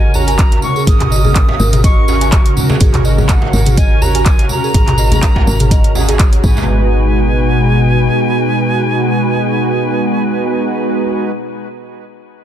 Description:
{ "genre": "afro house", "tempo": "124 BPM", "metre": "4/4", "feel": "swing 54% on 16ths", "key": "G# minor", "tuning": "A4 = 440 Hz", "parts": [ { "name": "silver concert flute", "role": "melody", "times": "0.0-11.3 s", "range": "F#5 to D#6", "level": "-21 LUFS", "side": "equal", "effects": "ping-pong delay" }, { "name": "ethereal airy pad", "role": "sustained chords", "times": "0.0-11.3 s", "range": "B2 to F#4", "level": "-19 LUFS", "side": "equal", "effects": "ensemble chorus, built-in reverb, sidechain pumping" }, { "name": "mellow synth brass", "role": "stabs", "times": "0.0-11.3 s", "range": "G#3 to B4", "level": "-18 LUFS", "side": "right 2 dB", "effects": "chorus, sidechain pumping, ping-pong delay" }, { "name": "woody FM bass", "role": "bass", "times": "0.0-8.1 s", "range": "G#1", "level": "-15 LUFS", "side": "equal", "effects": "sidechain pumping" }, { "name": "tambourine", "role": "percussion", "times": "0.1-6.7 s", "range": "none", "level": "-27 LUFS", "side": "right 4 dB", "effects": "none" }, { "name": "djembe", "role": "percussion", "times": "0.2-6.7 s", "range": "none", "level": "-24 LUFS", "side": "right 2 dB", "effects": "none" }, { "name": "buzzing marimba with soft mallets", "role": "arpeggios", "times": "0.3-6.9 s", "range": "G#4 to G#5", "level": "-24 LUFS", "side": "equal", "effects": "vintage 12-bit sampler grit, sidechain pumping, ping-pong delay" }, { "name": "afro-pop drum kit", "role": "drums", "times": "0.3-6.4 s", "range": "handclaps, hi-hat, toms", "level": "-20 LUFS", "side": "left 1 dB", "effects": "none" }, { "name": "electronic kick drum", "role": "drums", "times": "0.4-6.5 s", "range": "none", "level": "-11 LUFS", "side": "equal", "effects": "none" }, { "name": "congas", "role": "percussion", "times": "0.6-6.7 s", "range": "none", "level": "-20 LUFS", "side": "left 3 dB", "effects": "none" } ], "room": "little or no reverb", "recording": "dense, heavily limited modern master", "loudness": "-10 LUFS", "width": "side -10 dB against mid", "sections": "0.0-6.7 A section; 6.7-10.6 B section", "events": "drop 0.0-6.7", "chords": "0.0 F#/G#; 6.4 G#m7", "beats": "0.39 | 0.87 1.36 1.84 2.32 | 2.81 3.29 3.77 4.26 | 4.74 5.23 5.71 6.20 | 6.68 7.16 7.65 8.13 | 8.61 9.10 9.58 10.07" }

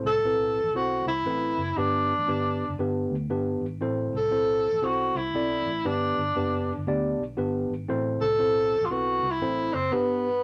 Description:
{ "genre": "uptempo 1960s-style soul", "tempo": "118 BPM", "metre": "4/4", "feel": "swing 63% on 8ths", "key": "A dorian", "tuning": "A4 = 441 Hz", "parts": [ { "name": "tine electric piano", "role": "accompaniment", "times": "0.0-10.4 s", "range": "G2 to D5", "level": "-31 LUFS", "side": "equal", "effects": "tube saturation" }, { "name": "vintage muted fingered electric bass", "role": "bass", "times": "0.0-9.9 s", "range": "F#1 to D2", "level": "-37 LUFS", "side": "equal", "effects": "none" }, { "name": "breathy tenor saxophone", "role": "melody", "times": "0.1-10.4 s", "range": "B3 to A4", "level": "-27 LUFS", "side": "equal", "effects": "none" } ], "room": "moderate studio reverb, RT60 0.7 s", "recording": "none", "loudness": "-26 LUFS", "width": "mono", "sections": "0.0-10.4 A section", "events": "none", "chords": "0.0 Am; 1.8 G; 3.8 Am; 5.8 G; 7.9 Am; 9.9 G", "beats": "0.23 0.74 1.25 | 1.76 2.27 2.79 3.30 | 3.81 4.32 4.83 5.34 | 5.85 6.36 6.87 7.38 | 7.89 8.40 8.91 9.42 | 9.93 10.43" }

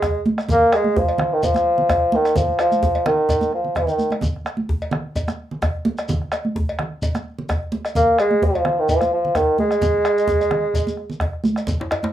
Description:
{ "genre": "west african traditional, West African drum ensemble", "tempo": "129 BPM", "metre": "4/4", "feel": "swing 54% on 16ths", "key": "unclear", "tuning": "A4 = 437 Hz", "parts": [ { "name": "mellow bassoon", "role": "melody", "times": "0.0-4.1, 8.0-11.2 s", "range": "Eb3 to Bb3", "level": "-17 LUFS", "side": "equal", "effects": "none" }, { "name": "bombo", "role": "percussion", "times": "0.0-12.0 s", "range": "none", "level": "-25 LUFS", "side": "right 1 dB", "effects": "none" }, { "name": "congas", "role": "percussion", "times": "0.0-12.1 s", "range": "none", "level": "-25 LUFS", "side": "right 2 dB", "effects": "none" }, { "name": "cowbell", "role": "percussion", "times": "0.0-12.0 s", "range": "none", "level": "-29 LUFS", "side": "left 2 dB", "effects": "none" }, { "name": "djembe", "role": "percussion", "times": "0.0-11.8 s", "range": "none", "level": "-29 LUFS", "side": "left 1 dB", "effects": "none" }, { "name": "shekere", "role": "percussion", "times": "0.0-12.0 s", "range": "none", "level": "-32 LUFS", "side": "equal", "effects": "none" }, { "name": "djembe", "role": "percussion", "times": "11.8-12.1 s", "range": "none", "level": "-26 LUFS", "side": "left 1 dB", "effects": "none" } ], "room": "light reverb", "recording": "rough home demo mix, small room ambience", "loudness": "-17 LUFS", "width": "side -12 dB against mid", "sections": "0.0-11.7 A section", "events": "drum fill 3.6-4.2", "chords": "none", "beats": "0.02 | 0.49 0.96 1.43 1.89 | 2.36 2.83 3.29 3.76 | 4.23 4.69 5.16 5.63 | 6.09 6.56 7.03 7.49 | 7.96 8.42 8.89 9.36 | 9.82 10.29 10.75 11.22 | 11.68" }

